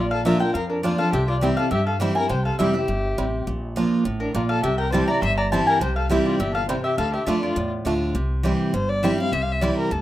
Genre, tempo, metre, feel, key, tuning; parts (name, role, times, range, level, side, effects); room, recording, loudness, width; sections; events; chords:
bluegrass; 205 BPM; 4/4; straight; A4 = 436 Hz
mandolin; melody; 0.0-7.7 s; Bb4 to C6; -26 LUFS; left 2 dB
dark fiddle; second line; 0.0-10.0 s; D4 to F5; -27 LUFS; left 1 dB
picked steel-string acoustic guitar; accompaniment; 0.0-10.0 s; F2 to F4; -23 LUFS; right 1 dB
upright bass; bass; 0.0-10.0 s; F1 to G2; -27 LUFS; equal
bluegrass banjo; melody; 0.3-9.7 s; G3 to E4; -31 LUFS; right 5 dB
moderate small room reverb, RT60 0.5 s; rough home demo mix; -20 LUFS; side -14 dB against mid
0.0-8.2 A section; 8.2-10.0 B section
fiddle solo 8.2-10.0
0.0 Bb; 1.1 C; 3.5 Bb; 4.6 C; 7.0 Dm; 8.2 C